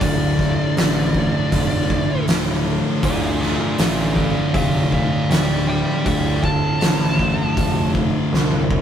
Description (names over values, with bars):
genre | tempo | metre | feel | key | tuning
stoner and doom metal | 79 BPM | 4/4 | straight | D minor | A4 = 440 Hz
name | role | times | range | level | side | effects
fuzz lead guitar | melody | 0.0-7.9 s | F4 to A5 | -25 LUFS | right 1 dB | distortion
tonewheel organ | sustained chords | 0.0-8.8 s | D3 to F4 | -33 LUFS | equal | none
thick fuzz guitar | riff | 0.0-8.8 s | D2 to D3 | -22 LUFS | left 4 dB | distortion
thick fuzz guitar | riff | 0.0-8.8 s | D2 to D3 | -25 LUFS | right 4 dB | distortion
fuzz picked electric bass | bass | 0.0-8.8 s | D1 to C2 | -23 LUFS | equal | overdrive
oversized low-tuned drum kit | drums | 0.0-8.8 s | hi-hat, kick drum, snare drum, toms | -22 LUFS | right 1 dB | none
room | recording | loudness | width
light reverb | rough rehearsal-room recording | -16 LUFS | side -9 dB against mid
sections
0.0-8.8 A section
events
lead electric guitar solo 0.0-8.8; drum fill 8.3-8.8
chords
0.0 Dm